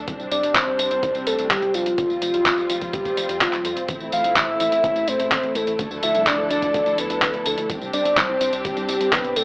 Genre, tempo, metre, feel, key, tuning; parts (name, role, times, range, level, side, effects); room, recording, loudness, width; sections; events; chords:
italo disco; 126 BPM; 4/4; straight; A4 = 440 Hz
rich symphonic string section; sustained chords; 0.0-9.4 s; F3 to A4; -28 LUFS; equal; vintage 12-bit sampler grit
chorused synth bass; bass; 0.0-9.4 s; F1 to F2; -34 LUFS; equal; tube saturation
dusty soul sampler-style drum kit; drums; 0.1-9.4 s; handclaps, hi-hat, tambourine; -22 LUFS; equal; studio ambience
electronic kick drum; drums; 0.1-9.2 s; -32 LUFS; equal; overdrive, studio ambience
soft octave-layered synth lead; melody; 0.3-9.4 s; F4 to F5; -21 LUFS; equal; chorus, phaser
light reverb; dry, gritty hardware recording, cassette tape, AM radio sound; -18 LUFS; side -27 dB against mid
0.0-9.4 A section
0.1 Csus2; 2.0 Fsus2; 3.9 Am; 5.8 Dmadd9; 7.7 Csus2